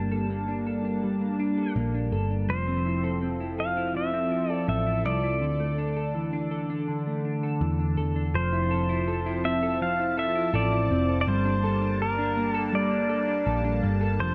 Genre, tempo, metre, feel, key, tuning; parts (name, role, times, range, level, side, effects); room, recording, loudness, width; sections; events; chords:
dream pop; 82 BPM; 4/4; straight; G dorian; A4 = 439 Hz
pedal steel guitar; melody; 0.0-14.3 s; Bb4 to A5; -32 LUFS; equal; digital delay
phased analog pad; sustained chords; 0.0-14.3 s; D3 to A5; -34 LUFS; equal; phaser, chorus
semi-hollow electric guitar; arpeggios; 0.0-14.3 s; D3 to A4; -32 LUFS; equal; analog chorus, digital delay
picked electric bass; bass; 0.0-14.3 s; F1 to E2; -32 LUFS; equal
moderate concert hall reverb, RT60 2.4 s; -27 LUFS; mono
0.0-8.3 A section; 8.3-14.3 B section
0.0 Gmadd9; 2.5 Fmaj7; 5.4 Dsus2; 8.3 Fmaj7; 11.3 Gmadd9